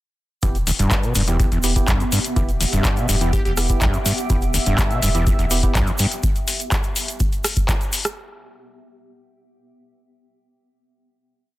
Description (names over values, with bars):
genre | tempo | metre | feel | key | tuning
acid house | 124 BPM | 4/4 | straight | E minor | A4 = 440 Hz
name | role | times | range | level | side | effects
overdriven acid bass | riff | 0.4-6.1 s | D2 to B2 | -23 LUFS | equal | distortion, analog chorus, sidechain pumping
percussive organ stab | stabs | 0.4-5.8 s | B3 to G4 | -29 LUFS | right 3 dB | chorus, digital delay
warm sub bass | bass | 0.4-5.8 s | E1 to B1 | -23 LUFS | equal | sidechain pumping
booming analog drum machine | drums | 0.4-8.1 s | handclaps, hi-hat, rim click | -24 LUFS | left 2 dB | none
electronic kick drum | drums | 0.4-7.8 s | none | -21 LUFS | equal | none
egg shaker | percussion | 0.4-8.1 s | none | -30 LUFS | right 3 dB | none
granular cloud pad | texture | 1.2-6.2 s | B3 to G5 | -30 LUFS | right 2 dB | built-in reverb, sidechain pumping
plucky unison lead | melody | 3.3-3.5 s | G4 | -33 LUFS | equal | none
warm analog pad | sustained chords | 4.3-6.2 s | E5 | -30 LUFS | right 3 dB | chorus, sidechain pumping
room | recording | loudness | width
light reverb | dense, heavily limited modern master | -17 LUFS | side -16 dB against mid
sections
0.4-8.2 groove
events
none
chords
0.4 Em